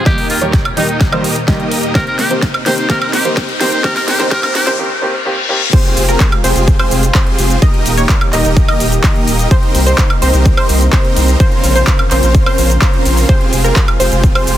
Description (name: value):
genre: EDM, festival progressive house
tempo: 127 BPM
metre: 4/4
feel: straight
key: F minor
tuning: A4 = 440 Hz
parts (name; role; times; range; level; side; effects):
- trumpet with metal mute; melody; 0.0-4.7 s; Eb4 to C5; -20 LUFS; equal; tape echo
- lush unison pad; sustained chords; 0.0-14.6 s; Eb2 to C5; -24 LUFS; equal; chorus, sidechain pumping
- wide unison pluck; arpeggios; 0.0-14.6 s; Bb4 to Eb5; -20 LUFS; right 1 dB; sidechain pumping, tape echo
- dense compressed supersaw; riff; 0.0-14.6 s; Bb3 to Eb5; -18 LUFS; equal; sidechain pumping, low-pass filter, tape echo
- riser and reverse cymbal; sound effects; 1.6-5.7 s; none; -23 LUFS; left 5 dB; none
- warm concert grand piano; accompaniment; 0.1-5.6 s; Eb3 to C5; -21 LUFS; equal; sidechain pumping, tape echo
- big-room dance drum kit; drums; 0.1-14.6 s; crash cymbal, handclaps, hi-hat, shaker, snare drum, woodblock; -19 LUFS; equal; overdrive
- electronic kick drum; drums; 0.1-14.3 s; none; -12 LUFS; equal; overdrive
- saturated sub bass; bass; 6.0-14.6 s; Eb1 to C2; -14 LUFS; equal; sidechain pumping
room: light reverb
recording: dense, heavily limited modern master, high-pass filter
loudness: -10 LUFS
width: side -12 dB against mid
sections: 0.0-5.7 A section; 5.7-14.6 B section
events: build-up 0.0-5.7; drum fill 0.0-4.8; filter sweep on supersaw synth 0.0-5.7; filter sweep on synth pluck 0.0-5.7; filter sweep 0.0-5.7; riser 1.6-4.8; break 4.8-5.7; reverse cymbal 4.8-5.7; drop 5.7-14.6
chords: 0.1 Eb; 2.0 Cm7; 3.8 Bbmadd9; 5.7 Fmadd9; 7.6 Eb; 9.5 Cm7; 11.4 Bbmadd9; 13.3 Fmadd9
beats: | 0.06 0.53 1.01 1.48 | 1.95 2.42 2.90 3.37 | 3.84 4.31 4.79 5.26 | 5.73 6.20 6.68 7.15 | 7.62 8.09 8.57 9.04 | 9.51 9.98 10.46 10.93 | 11.40 11.87 12.35 12.82 | 13.29 13.76 14.23